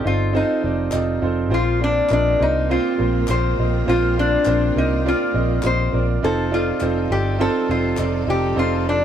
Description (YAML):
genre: piano-driven pop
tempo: 102 BPM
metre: 4/4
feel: straight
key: unclear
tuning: A4 = 440 Hz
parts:
  - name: lap resonator guitar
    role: melody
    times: 0.0-9.0 s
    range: D4 to C5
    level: -21 LUFS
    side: left 3 dB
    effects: none
  - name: bright grand piano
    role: accompaniment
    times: 0.0-9.0 s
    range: Bb2 to Eb5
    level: -22 LUFS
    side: right 4 dB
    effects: none
  - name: vintage muted fingered electric bass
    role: bass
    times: 0.1-9.0 s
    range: F1 to C2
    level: -22 LUFS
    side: left 1 dB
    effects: none
  - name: group handclap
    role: percussion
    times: 0.9-8.1 s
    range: none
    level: -34 LUFS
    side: left 3 dB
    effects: none
  - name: bright symphonic string section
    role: sustained chords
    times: 1.5-9.0 s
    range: F3 to A4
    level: -33 LUFS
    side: left 1 dB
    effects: none
room: moderate studio ambience, RT60 0.4 s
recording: band playing live in one room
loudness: -17 LUFS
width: side -9 dB against mid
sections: 0.0-9.0 A section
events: none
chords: 0.0 F7; 1.5 Bbsus2; 6.2 F7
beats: 0.35 0.94 | 1.52 2.11 2.70 3.29 | 3.87 4.46 5.05 5.64 | 6.22 6.81 7.40 7.99 | 8.58